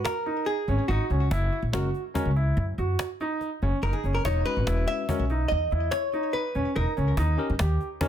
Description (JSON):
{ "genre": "progressive instrumental, band music in an uneven meter", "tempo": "143 BPM", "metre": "7/4", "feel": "straight", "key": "unclear", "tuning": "A4 = 440 Hz", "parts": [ { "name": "hollow-body jazz guitar", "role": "melody", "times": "0.0-7.1 s", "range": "F#4 to E5", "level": "-29 LUFS", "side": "equal", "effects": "plate reverb, ping-pong delay" }, { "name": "clear concert grand piano", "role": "arpeggios", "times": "0.0-8.1 s", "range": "C#4 to G4", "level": "-31 LUFS", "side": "right 2 dB", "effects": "plate reverb" }, { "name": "cajon", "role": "drums", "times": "0.1-8.1 s", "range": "none", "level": "-32 LUFS", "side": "equal", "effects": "none" }, { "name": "upright bass", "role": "bass", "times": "0.7-7.8 s", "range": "E1 to G2", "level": "-25 LUFS", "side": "equal", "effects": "none" }, { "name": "barky tine electric piano", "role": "accompaniment", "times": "1.7-8.1 s", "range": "G#3 to B4", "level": "-33 LUFS", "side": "left 4 dB", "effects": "plate reverb" } ], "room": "light reverb", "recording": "dense, heavily limited modern master", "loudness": "-24 LUFS", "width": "side -10 dB against mid", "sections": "0.0-8.1 A section", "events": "none", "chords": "0.0 G#7(no3); 1.3 F#7; 4.3 Emaj7; 7.2 D#7" }